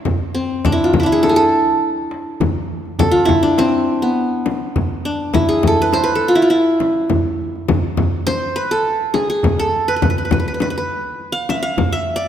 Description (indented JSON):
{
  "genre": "Arabic maqam ensemble",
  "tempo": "102 BPM",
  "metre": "4/4",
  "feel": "straight",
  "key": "E maqam hijaz",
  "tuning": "A4 = 440 Hz",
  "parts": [
    { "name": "qanun", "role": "melody", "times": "0.0-12.3 s", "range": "B3 to F5+25c", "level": "-16 LUFS", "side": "equal", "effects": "none" },
    { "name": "darbuka", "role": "percussion", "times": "0.1-11.9 s", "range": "none", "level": "-23 LUFS", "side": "right 2 dB", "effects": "none" },
    { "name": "frame drum", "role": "percussion", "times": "0.1-11.9 s", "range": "none", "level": "-21 LUFS", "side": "left 4 dB", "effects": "none" }
  ],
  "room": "moderate concert hall reverb, RT60 2.1 s",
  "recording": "none",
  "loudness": "-15 LUFS",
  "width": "side -9 dB against mid",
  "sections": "0.1-12.3 A section",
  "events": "none",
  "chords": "none"
}